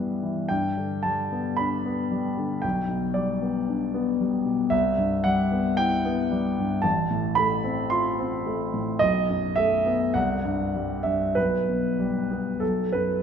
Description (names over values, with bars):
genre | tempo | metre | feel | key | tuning
classical, romantic nocturne for solo piano | 48-58 BPM | 4/4 | rubato | unclear | A4 = 439 Hz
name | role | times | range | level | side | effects
warm grand piano | solo | 0.0-13.2 s | A1 to C6 | -22 LUFS | equal | none
room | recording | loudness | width
wet scoring stage reverb, RT60 1.9 s | minimal, uncompressed stereo recording | -22 LUFS | side -7 dB against mid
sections
0.0-13.2 A section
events
none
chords
0.0 Em/G; 0.5 G; 2.6 G/B; 4.7 Cmaj7; 6.8 F/A; 9.0 B7; 10.1 C5; 11.4 G/B; 12.6 B5